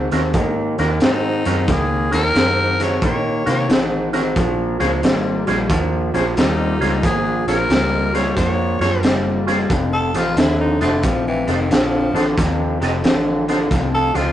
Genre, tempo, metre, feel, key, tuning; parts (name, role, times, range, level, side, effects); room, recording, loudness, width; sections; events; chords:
electric blues shuffle; 90 BPM; 4/4; swing 66% on 8ths; Bb minor; A4 = 440 Hz
electric guitar through a small old amp; riff; 0.0-14.3 s; F2 to C4; -20 LUFS; equal; spring reverb
vintage muted fingered electric bass; bass; 0.0-14.3 s; F1 to C3; -24 LUFS; equal
overdriven tonewheel organ; accompaniment; 0.1-14.3 s; Db4 to Eb5; -25 LUFS; right 2 dB; slow rotary speaker, chorus vibrato
crunchy breakbeat drum kit; drums; 0.1-14.3 s; hi-hat, kick drum, snare drum; -21 LUFS; equal
growling tenor saxophone; melody; 1.0-14.3 s; Eb3 to Db5; -22 LUFS; left 1 dB
moderate stone room reverb, RT60 1.1 s; rough rehearsal-room recording, warm saturation, nothing above 10.4 kHz; -15 LUFS; side -12 dB against mid
0.0-14.3 A section
tenor saxophone solo 0.0-14.3
0.0 Ebm7; 4.4 Bbm7; 9.7 F7b9